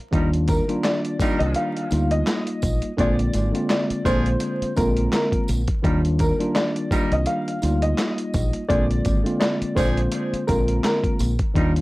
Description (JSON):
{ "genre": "hip hop, boom-bap hip-hop", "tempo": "84 BPM", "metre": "4/4", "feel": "swing 55% on 16ths", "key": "Eb major", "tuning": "A4 = 440 Hz", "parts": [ { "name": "tine electric piano", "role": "accompaniment", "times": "0.1-11.8 s", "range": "D3 to F4", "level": "-24 LUFS", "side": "equal", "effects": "medium stereo tremolo, high-pass filter, low-pass filter" }, { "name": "warm horn section", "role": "stabs", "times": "0.1-11.7 s", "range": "F3 to Bb4", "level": "-31 LUFS", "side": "right 1 dB", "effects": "high-pass filter, low-pass filter, analog delay" }, { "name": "deep dub fingered electric bass", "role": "bass", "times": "0.1-11.8 s", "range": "Ab1 to Eb2", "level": "-22 LUFS", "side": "equal", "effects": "transformer saturation" }, { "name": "dusty soul sampler-style drum kit", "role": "drums", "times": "0.1-11.8 s", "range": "handclaps, hi-hat, kick drum, snare drum", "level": "-24 LUFS", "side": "equal", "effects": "overdrive" }, { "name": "dark upright piano", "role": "melody", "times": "0.5-11.2 s", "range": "Bb4 to F5", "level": "-26 LUFS", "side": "equal", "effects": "high-pass filter, low-pass filter" }, { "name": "tambourine", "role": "percussion", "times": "0.5-11.4 s", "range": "none", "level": "-42 LUFS", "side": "right 2 dB", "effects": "none" } ], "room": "little or no reverb", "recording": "dry, gritty hardware recording, vinyl crackle", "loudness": "-19 LUFS", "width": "side -20 dB against mid", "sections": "0.1-11.8 A section", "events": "none", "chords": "0.1 Ebmaj7; 3.0 Bb7; 5.8 Ebmaj7; 8.7 Bb7", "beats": "| 0.13 0.84 1.55 2.27 | 2.98 3.70 4.41 5.13 | 5.84 6.55 7.27 7.98 | 8.70 9.41 10.13 10.84 | 11.55" }